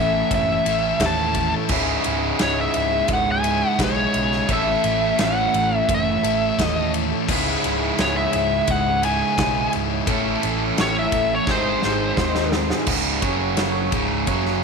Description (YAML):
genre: classic rock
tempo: 86 BPM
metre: 4/4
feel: straight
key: C# minor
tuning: A4 = 440 Hz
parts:
  - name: dark smooth lead guitar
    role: melody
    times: 0.0-12.5 s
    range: B#4 to A5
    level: -22 LUFS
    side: left 1 dB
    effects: wah, overdrive, slapback echo
  - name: picked twelve-string acoustic guitar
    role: accompaniment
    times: 0.0-12.9 s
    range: G#2 to A4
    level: -31 LUFS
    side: left 11 dB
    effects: none
  - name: tonewheel organ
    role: sustained chords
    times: 0.0-14.6 s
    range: C#4 to C#5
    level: -33 LUFS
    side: right 6 dB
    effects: overdrive, wide subtle chorus
  - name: crunchy overdriven guitar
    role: riff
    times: 0.0-14.6 s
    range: C#2 to A4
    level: -24 LUFS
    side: right 12 dB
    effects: none
  - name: overdriven electric guitar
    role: riff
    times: 0.0-14.6 s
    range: C#2 to A4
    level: -27 LUFS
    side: left 13 dB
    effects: none
  - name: picked electric bass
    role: bass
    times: 0.0-14.6 s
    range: C#1 to D#2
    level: -28 LUFS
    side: left 1 dB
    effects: none
  - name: big rock drum kit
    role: drums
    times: 0.3-14.5 s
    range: crash cymbal, kick drum, ride cymbal, snare drum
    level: -26 LUFS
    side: equal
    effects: none
room: moderate echo chamber reverb, RT60 2.5 s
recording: 1960s-style stereo with parts hard left and right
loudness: -18 LUFS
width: side -5 dB against mid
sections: 0.0-12.9 A section; 12.9-14.6 B section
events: drum fill 11.5-12.9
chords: 0.0 A; 1.7 C#m; 4.5 A; 7.3 C#m; 10.1 A; 11.5 G#; 12.9 C#5; 13.2 F#5; 13.9 C#5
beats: 0.31 1.00 | 1.70 2.40 3.09 3.79 | 4.49 5.19 5.89 6.59 | 7.29 7.99 8.69 9.39 | 10.09 10.79 11.49 12.19 | 12.89 13.59 14.28